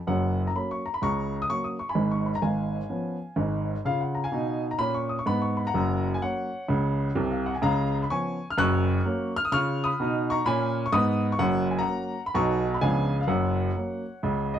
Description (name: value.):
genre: jazz, stride piano.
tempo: 127 BPM.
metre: 4/4.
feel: swing 65% on 8ths.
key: F# major.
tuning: A4 = 440 Hz.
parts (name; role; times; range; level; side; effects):
warm upright piano; solo; 0.1-14.6 s; F#1 to F#6; -24 LUFS; equal; none.
room: light reverb.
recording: dark, warm production.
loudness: -24 LUFS.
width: side -10 dB against mid.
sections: 0.1-14.6 A section.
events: none.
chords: 0.1 F#; 2.0 C#7/G#; 3.8 C#7; 5.7 F#; 7.6 C#7; 8.6 F#; 9.5 C#7; 11.4 F#; 12.4 B; 12.8 C#7b9; 13.3 F#.